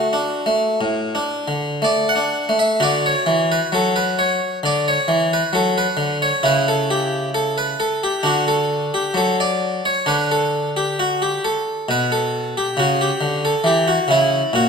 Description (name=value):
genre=classical, baroque-style suite movement for harpsichord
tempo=66 BPM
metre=4/4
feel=rubato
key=D major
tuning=A4 = 438 Hz
part: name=harpsichord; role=solo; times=0.0-14.7 s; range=A2 to F#5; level=-16 LUFS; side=equal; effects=none
room=wet recital hall reverb, RT60 1.5 s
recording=none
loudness=-17 LUFS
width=side -5 dB against mid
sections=0.0-2.8 A section; 2.8-14.7 B section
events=none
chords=0.0 D; 6.4 C#m7b5; 8.2 D; 10.1 Bm/D; 13.7 A#dim7